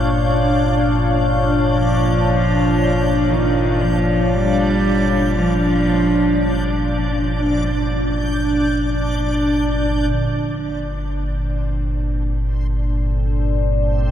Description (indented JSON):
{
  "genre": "dark ambient drone",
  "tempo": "free time",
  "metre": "none",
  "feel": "none",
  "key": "unclear",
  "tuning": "A4 = 440 Hz",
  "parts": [
    { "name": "deep dark ambient pad", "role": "sustained chords", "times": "0.0-14.1 s", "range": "D4 to A5", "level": "-21 LUFS", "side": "equal", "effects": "chorus, built-in reverb" },
    { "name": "deep rumbling drone", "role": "drone", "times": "0.0-14.1 s", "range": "G1 to Bb2", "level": "-20 LUFS", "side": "equal", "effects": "built-in reverb" },
    { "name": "backwards swelling texture", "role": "texture", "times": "0.0-14.1 s", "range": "C4 to G6", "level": "-25 LUFS", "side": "left 1 dB", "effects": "built-in reverb" },
    { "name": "warm cello", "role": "melody", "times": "1.7-6.9 s", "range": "Eb3 to G3", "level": "-22 LUFS", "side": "equal", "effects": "tape echo" },
    { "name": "gamelan-type bossed gongs", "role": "arpeggios", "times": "5.9-14.1 s", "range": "D3 to Ab3", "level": "-35 LUFS", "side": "left 2 dB", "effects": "none" }
  ],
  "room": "moderate huge ambient reverb, RT60 9.1 s",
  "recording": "none",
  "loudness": "-16 LUFS",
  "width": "side -10 dB against mid",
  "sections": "0.0-10.1 A section; 10.1-14.1 B section",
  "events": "filter sweep on synth drone 0.0-10.1; fade-in on synth texture 10.1-14.1",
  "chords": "0.0 Bbm; 10.1 Gmadd9",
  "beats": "free time"
}